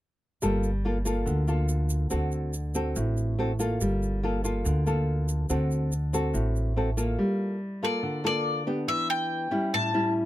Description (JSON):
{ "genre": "bossa nova", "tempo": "142 BPM", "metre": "4/4", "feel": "straight", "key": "G minor", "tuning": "A4 = 441 Hz", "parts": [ { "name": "nylon-string guitar", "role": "accompaniment", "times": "0.4-10.3 s", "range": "A2 to A4", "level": "-28 LUFS", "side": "equal", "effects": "none" }, { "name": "upright bass", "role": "bass", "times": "0.4-7.1 s", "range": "G1 to D2", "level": "-27 LUFS", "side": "equal", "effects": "none" }, { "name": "tube shaker", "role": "percussion", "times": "0.4-7.2 s", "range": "none", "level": "-40 LUFS", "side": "right 4 dB", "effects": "none" }, { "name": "bowl-back mandolin", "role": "melody", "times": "7.8-10.1 s", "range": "D5 to A5", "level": "-28 LUFS", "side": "left 2 dB", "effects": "none" } ], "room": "little or no reverb", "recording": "close, detailed microphones", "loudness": "-25 LUFS", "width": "side -14 dB against mid", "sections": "0.4-7.2 A section; 7.2-10.3 B section", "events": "none", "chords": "0.4 Gm9; 2.1 D7; 3.8 Gm9; 5.5 D7; 7.2 Gm9; 8.9 Em7; 9.7 A7" }